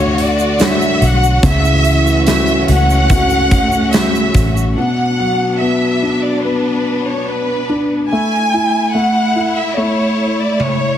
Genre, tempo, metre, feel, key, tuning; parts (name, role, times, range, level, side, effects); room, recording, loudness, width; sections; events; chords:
pop ballad; 72 BPM; 4/4; straight; A major; A4 = 439 Hz
warm studio violin section; melody; 0.0-11.0 s; B4 to G#5; -17 LUFS; equal
dark French horn section; second line; 0.0-4.3 s; C#3 to F#4; -23 LUFS; right 4 dB
warm concert grand piano; accompaniment; 0.0-11.0 s; B2 to C#5; -17 LUFS; left 1 dB
clear studio string section; sustained chords; 0.0-11.0 s; D3 to F#4; -22 LUFS; left 1 dB
vintage muted fingered electric bass; bass; 0.0-4.7 s; A1 to D2; -16 LUFS; equal
huge arena drum kit; drums; 0.2-4.5, 10.6-10.8 s; hi-hat, kick drum, snare drum, toms; -17 LUFS; equal
egg shaker; percussion; 0.4-4.8 s; -33 LUFS; right 10 dB
light reverb, small room reverb; heavily compressed radio sound, multiband compression; -12 LUFS; side -10 dB against mid
0.0-4.8 A section; 4.8-11.0 B section
drum fill 10.6-11.0
0.0 Dmaj7; 1.4 A6/C#; 4.8 Bm; 8.1 A5